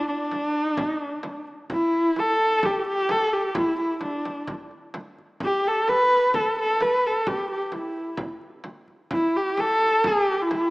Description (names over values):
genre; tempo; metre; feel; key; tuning
mongolian traditional, Mongolian folk; 130 BPM; 4/4; straight; G gong mode; A4 = 440 Hz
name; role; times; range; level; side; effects
warm horsehead fiddle; melody; 0.0-10.7 s; D4 to B4; -21 LUFS; equal; slapback echo
frame drum; percussion; 0.1-10.6 s; none; -35 LUFS; equal; none
room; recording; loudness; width
wet lush hall reverb, RT60 2.4 s; rough home demo mix, small speaker sound; -21 LUFS; side -22 dB against mid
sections
0.0-10.7 A section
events
none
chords
none